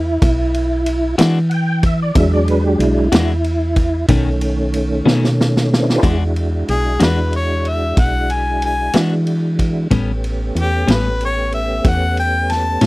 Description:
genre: slow blues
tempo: 62 BPM (dotted quarters)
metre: 12/8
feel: straight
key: E mixolydian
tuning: A4 = 441 Hz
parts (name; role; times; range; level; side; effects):
- tonewheel organ; sustained chords; 0.0-12.9 s; D#3 to G5; -20 LUFS; right 1 dB; slow rotary speaker, chorus vibrato
- solid FM bass; bass; 0.0-12.9 s; A1 to E3; -18 LUFS; equal; none
- vintage drum kit; drums; 0.2-12.9 s; kick drum, ride cymbal, snare drum; -18 LUFS; equal; none
- clean electric guitar; accompaniment; 1.2-12.9 s; A2 to F#4; -18 LUFS; left 3 dB; harmonic tremolo
- clear harmonica; melody; 6.7-12.8 s; G4 to A5; -19 LUFS; left 2 dB; overdrive
room: little or no reverb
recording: dry, close 1970s-style studio recording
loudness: -14 LUFS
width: side -20 dB against mid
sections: 0.0-6.0 A section; 6.0-12.9 B section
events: tonewheel organ solo 0.0-6.0; drum fill 5.1-6.0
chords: 0.0 E9; 4.1 B9; 6.0 E9; 9.9 A9

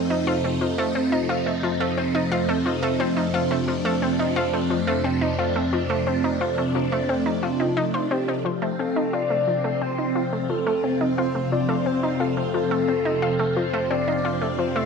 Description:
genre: ambient, sequencer-driven space music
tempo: 88 BPM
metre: 4/4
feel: straight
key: unclear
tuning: A4 = 440 Hz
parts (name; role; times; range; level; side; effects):
- phased string machine; sustained chords; 0.0-14.9 s; C3 to F4; -25 LUFS; left 1 dB; ensemble chorus, phaser
- analog pluck; riff; 0.0-14.9 s; F3 to C5; -27 LUFS; left 1 dB; chorus, ping-pong delay
- analog drone; bass; 0.0-14.9 s; F2; -32 LUFS; left 1 dB; chorus
- vibraphone with soft mallets; arpeggios; 0.3-8.2 s; C4 to C5; -26 LUFS; right 3 dB; auto-pan, ping-pong delay
- soft octave-layered synth lead; melody; 8.8-14.9 s; A4 to D5; -26 LUFS; left 1 dB; chorus, ping-pong delay
room: wet plate reverb, RT60 2.6 s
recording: none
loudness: -21 LUFS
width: side -5 dB against mid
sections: 0.0-8.5 A section; 8.5-14.9 B section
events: fade-in on synth drone 8.5-14.9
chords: 0.0 F7; 8.5 F

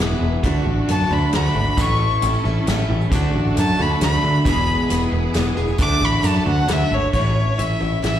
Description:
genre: folk rock and heartland rock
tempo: 134 BPM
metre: 3/4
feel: straight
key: D lydian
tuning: A4 = 439 Hz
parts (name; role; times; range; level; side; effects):
- picked steel-string acoustic guitar; accompaniment; 0.0-8.2 s; E2 to G#4; -24 LUFS; left 1 dB; slapback echo
- clear studio string section; sustained chords; 0.0-7.1 s; B3 to A4; -30 LUFS; right 2 dB; none
- electric guitar through a small old amp; riff; 0.0-8.2 s; E2 to D4; -29 LUFS; right 1 dB; slapback echo
- picked electric bass; bass; 0.0-8.2 s; E1 to D3; -20 LUFS; equal; none
- natural country drum kit; drums; 0.0-8.1 s; hi-hat, kick drum, snare drum; -24 LUFS; equal; none
- rich fiddle; melody; 0.9-8.2 s; C#5 to D6; -22 LUFS; left 1 dB; slapback echo
- tambourine; percussion; 1.8-6.8 s; none; -39 LUFS; right 5 dB; none
room: light reverb, small room ambience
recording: live gig heard through the venue's PA, recital hall reverb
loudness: -16 LUFS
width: side -10 dB against mid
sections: 0.0-7.1 A section; 7.1-8.2 B section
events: fiddle solo 0.0-7.1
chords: 0.4 D; 1.8 A; 3.1 D; 4.5 E; 5.8 D; 7.1 A

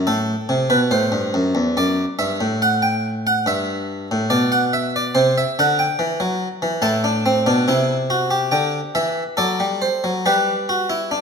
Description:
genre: classical, baroque-style 3-part fugue for harpsichord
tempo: 71 BPM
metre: 4/4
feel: straight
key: unclear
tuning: A4 = 440 Hz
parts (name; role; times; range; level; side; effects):
- harpsichord; solo; 0.0-11.2 s; E2 to A5; -17 LUFS; equal; none
room: wet recital hall reverb, RT60 1.3 s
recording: none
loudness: -17 LUFS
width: side -6 dB against mid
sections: 0.1-11.2 A section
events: none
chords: 0.1 Am; 1.8 D/F#; 3.5 G; 5.1 C; 6.8 Am7; 10.2 G

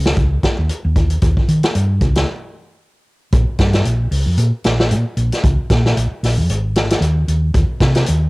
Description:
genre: afrobeat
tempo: 114 BPM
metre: 4/4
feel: swing 56% on 16ths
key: unclear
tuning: A4 = 440 Hz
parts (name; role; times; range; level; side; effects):
- hollow-body short-scale fingered electric bass; bass; 0.0-8.3 s; Ab1 to Eb3; -16 LUFS; equal; none
- vintage drum kit; drums; 0.1-8.2 s; hi-hat, kick drum, snare drum; -17 LUFS; equal; none
room: little or no reverb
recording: home recording on cassette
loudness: -14 LUFS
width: side -23 dB against mid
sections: 0.0-3.3 A section; 3.3-8.3 B section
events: break 2.3-3.3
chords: none

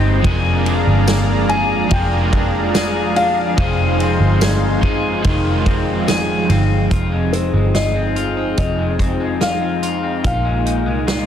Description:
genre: dream pop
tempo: 72 BPM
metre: 4/4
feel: straight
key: F dorian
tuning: A4 = 442 Hz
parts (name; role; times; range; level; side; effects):
- crunchy overdriven guitar; accompaniment; 0.0-7.4 s; Eb3 to C5; -22 LUFS; right 4 dB; tremolo, lush chorus
- warm analog pad; sustained chords; 0.0-11.3 s; F3 to C6; -23 LUFS; equal; chorus
- electric guitar at the edge of break-up; arpeggios; 0.0-11.3 s; F2 to Ab4; -22 LUFS; left 6 dB; lush chorus, tape echo
- vintage muted picked electric bass; bass; 0.0-11.3 s; F1 to C2; -19 LUFS; equal; none
- vintage drum kit; drums; 0.2-11.3 s; hi-hat, kick drum, ride cymbal, snare drum, tambourine; -21 LUFS; equal; none
- felt-muted upright piano; melody; 1.5-11.3 s; C5 to Ab5; -23 LUFS; left 3 dB; tape echo
- large celesta; texture; 2.7-4.1 s; D5 to F5; -31 LUFS; right 2 dB; none
room: light reverb, small room reverb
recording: dense, heavily limited modern master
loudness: -14 LUFS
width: side -9 dB against mid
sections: 0.0-6.9 A section; 6.9-11.3 B section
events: none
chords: 0.2 Bb7/F; 6.9 Fm7; 10.2 Bb7sus4

